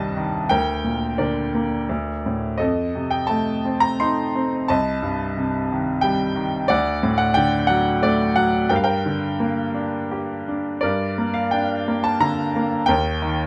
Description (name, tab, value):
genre	classical, lyrical solo piano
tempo	82-91 BPM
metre	3/4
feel	rubato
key	G minor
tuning	A4 = 440 Hz
part	bright upright piano	solo	0.0-13.5 s	C2 to C6	-22 LUFS	equal	none
room	light reverb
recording	close, detailed microphones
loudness	-22 LUFS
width	mono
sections	0.0-10.8 A section; 10.8-13.5 A section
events	none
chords	0.0 Cm; 0.5 Gm/D; 1.9 D5; 2.6 F7; 4.7 Cm; 6.7 D; 8.7 Gm; 12.9 Eb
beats	| 0.50 1.19 1.89 | 2.60 3.30 4.00 | 4.69 5.37 6.03 | 6.69 7.36 8.02 | 8.70 9.39 10.11 | 10.83 11.53 12.22 | 12.89